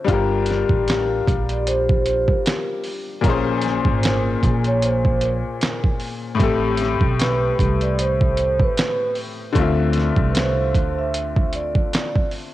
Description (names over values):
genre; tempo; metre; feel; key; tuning
lo-fi hip hop; 76 BPM; 4/4; swing 58% on 16ths; G dorian; A4 = 442 Hz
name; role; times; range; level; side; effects
bright upright piano; accompaniment; 0.0-12.5 s; A2 to E5; -23 LUFS; left 5 dB; cassette tape
upright bass; bass; 0.1-11.7 s; G1 to D2; -23 LUFS; right 1 dB; none
dusty soul sampler-style drum kit; drums; 0.1-12.5 s; hi-hat, kick drum, snare drum; -21 LUFS; right 1 dB; overdrive
vibraphone with soft mallets; melody; 0.9-12.3 s; Bb4 to E5; -24 LUFS; right 3 dB; cassette tape, analog delay
room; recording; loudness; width
light reverb, small room ambience; home recording on cassette; -17 LUFS; side -15 dB against mid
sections
0.1-12.5 A section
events
none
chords
0.1 Gm9; 3.2 Bbm9; 6.4 Am9; 9.6 Dm9